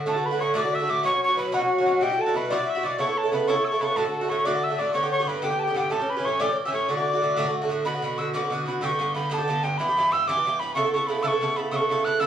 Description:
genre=celtic folk, Celtic jig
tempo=124 BPM (dotted quarters)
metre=6/8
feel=straight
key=D major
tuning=A4 = 438 Hz
part: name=Irish bouzouki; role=accompaniment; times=0.0-12.3 s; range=G2 to A4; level=-26 LUFS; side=right 2 dB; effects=none
part: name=breathy mellow mid whistle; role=melody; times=0.1-12.3 s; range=F#5 to F#6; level=-25 LUFS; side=equal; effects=none
part: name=accordion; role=second line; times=0.1-7.5 s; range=F#4 to E5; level=-27 LUFS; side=left 2 dB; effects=light tremolo tuning
room=wet studio reverb, RT60 0.5 s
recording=small room ambience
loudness=-22 LUFS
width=side -9 dB against mid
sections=0.1-7.9 A section; 7.9-12.3 B section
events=none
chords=0.1 D; 1.0 Bsus2; 2.0 Emadd9/B; 3.0 Aadd9; 4.0 D; 4.9 G; 5.9 A7; 6.9 D; 7.9 Bm; 8.8 G; 9.8 Em/G; 10.8 Aadd9

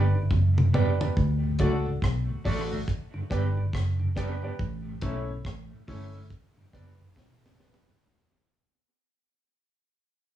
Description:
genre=roots reggae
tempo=70 BPM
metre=4/4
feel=swing 62% on 16ths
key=unclear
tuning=A4 = 440 Hz
part: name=electric guitar at the edge of break-up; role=accompaniment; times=0.0-7.9 s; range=A3 to G4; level=-37 LUFS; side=right 5 dB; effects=cassette tape, tape echo
part: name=warm baby grand piano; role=stabs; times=0.0-8.0 s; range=C#4 to D5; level=-34 LUFS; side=left 1 dB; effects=cassette tape
part: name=vintage muted fingered electric bass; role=bass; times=0.0-7.8 s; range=E1 to D2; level=-26 LUFS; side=equal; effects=transformer saturation
part: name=mellow tonewheel organ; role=accompaniment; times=0.2-7.9 s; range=D2 to D4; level=-35 LUFS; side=left 1 dB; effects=slow rotary speaker, cassette tape
part: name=deep reggae drum kit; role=drums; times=0.3-8.0 s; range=hi-hat, kick drum, rim click, snare drum, toms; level=-29 LUFS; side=right 1 dB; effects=cassette tape
room=light reverb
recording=home recording on cassette, studio ambience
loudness=-24 LUFS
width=side -12 dB against mid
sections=0.0-1.2 A section; 1.2-8.0 B section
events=drum fill 0.3-1.2, 7.2-8.0; fade-out 1.2-8.0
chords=0.0 G; 1.2 D; 2.9 G; 4.6 A; 6.3 G

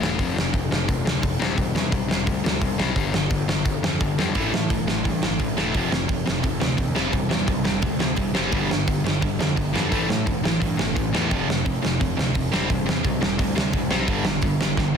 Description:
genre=punk rock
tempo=173 BPM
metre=4/4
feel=straight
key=unclear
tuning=A4 = 439 Hz
part: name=overdriven semi-hollow guitar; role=riff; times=0.0-14.9 s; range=F2 to C4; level=-25 LUFS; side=left 7 dB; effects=none
part: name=fuzz picked electric bass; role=bass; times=0.0-14.9 s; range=E1 to A2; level=-29 LUFS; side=right 1 dB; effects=overdrive
part: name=big rock drum kit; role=drums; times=0.0-14.9 s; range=hi-hat, kick drum, snare drum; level=-24 LUFS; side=right 1 dB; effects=none
part: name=distorted electric guitar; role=riff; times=4.4-15.0 s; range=F2 to C4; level=-27 LUFS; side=right 16 dB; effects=overdrive
room=little or no reverb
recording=dense, heavily limited modern master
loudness=-20 LUFS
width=side -7 dB against mid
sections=0.0-15.0 A section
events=drum fill 14.8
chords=0.2 F5; 1.4 C/E; 3.0 G5; 4.3 A5; 5.7 F5; 7.0 C/E; 8.5 G5; 9.9 A5; 11.3 F5; 12.5 C/E; 14.1 G5

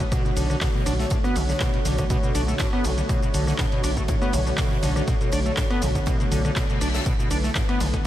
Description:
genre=acid house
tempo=121 BPM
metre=4/4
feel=swing 53% on 16ths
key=B minor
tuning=A4 = 440 Hz
part: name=warm analog pad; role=sustained chords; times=0.0-8.1 s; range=D3 to C#5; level=-28 LUFS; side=equal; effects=chorus, sidechain pumping
part: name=acid bass, square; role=riff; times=0.0-8.0 s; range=A2 to D4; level=-27 LUFS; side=equal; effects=overdrive, lush chorus, ping-pong delay
part: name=saturated sub bass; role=bass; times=0.0-8.0 s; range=B1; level=-26 LUFS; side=equal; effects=sidechain pumping
part: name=electronic kick drum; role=drums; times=0.0-8.0 s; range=none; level=-25 LUFS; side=equal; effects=none
part: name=punchy analog drum machine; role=drums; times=0.0-8.0 s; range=handclaps, hi-hat, ride cymbal, rim click, shaker, toms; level=-31 LUFS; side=equal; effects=none
part: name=gated 80s drum kit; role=drums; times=0.1-8.1 s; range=hi-hat, snare drum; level=-40 LUFS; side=right 2 dB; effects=sidechain pumping on hats, high-pass filter on hats, high-pass filter on snare, high-pass filter on room
part: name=reverse cymbal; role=sound effects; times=6.5-7.1 s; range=none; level=-37 LUFS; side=left 5 dB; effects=none
room=light reverb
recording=none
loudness=-20 LUFS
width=side -13 dB against mid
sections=0.0-8.1 A section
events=reverse cymbal 6.5-7.1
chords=0.0 Bm7

